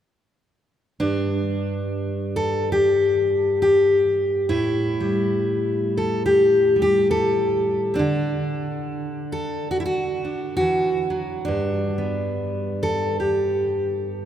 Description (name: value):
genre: folk, solo fingerstyle acoustic guitar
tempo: 69 BPM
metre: 4/4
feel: swing 57% on 8ths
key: G major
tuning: A4 = 443 Hz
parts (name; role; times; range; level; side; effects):
- fingerpicked steel-string acoustic guitar; solo; 1.0-14.3 s; G2 to A4; -19 LUFS; equal; none
room: wet cathedral reverb, RT60 4.7 s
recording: recorded in a church or concert hall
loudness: -19 LUFS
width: side -10 dB against mid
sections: 1.0-14.3 A section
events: none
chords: 1.0 N.C.; 4.5 A5; 8.0 Dadd9; 11.5 G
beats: | 1.01 1.88 2.75 3.62 | 4.50 5.37 6.24 7.11 | 7.99 8.86 9.73 10.60 | 11.48 12.35 13.22 14.10